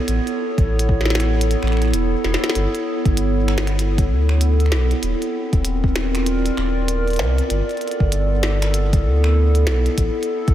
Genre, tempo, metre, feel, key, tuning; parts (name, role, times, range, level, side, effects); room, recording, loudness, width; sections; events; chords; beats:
IDM; 97 BPM; 4/4; swing 62% on 16ths; G lydian; A4 = 440 Hz
warbly tape-like pad; sustained chords; 0.0-10.5 s; B3 to D5; -22 LUFS; right 1 dB; chorus, built-in reverb
warm sub bass; bass; 0.1-10.5 s; Eb1 to D2; -18 LUFS; equal
glitchy drum kit; drums; 0.1-10.5 s; finger snaps, hi-hat, snare drum; -27 LUFS; equal
electronic kick drum; drums; 0.6-10.5 s; -18 LUFS; equal
moderate huge ambient reverb, RT60 8.8 s; dreamy mix soaked in reverb; -16 LUFS; side -12 dB against mid
0.0-10.5 A section
0.1 Aadd9; 2.6 Gadd9; 5.0 Eb5; 7.5 Gadd9; 10.0 Asus2
| 0.08 0.70 1.32 1.94 | 2.55 3.17 3.79 4.41 | 5.03 5.65 6.26 6.88 | 7.50 8.12 8.74 9.36 | 9.98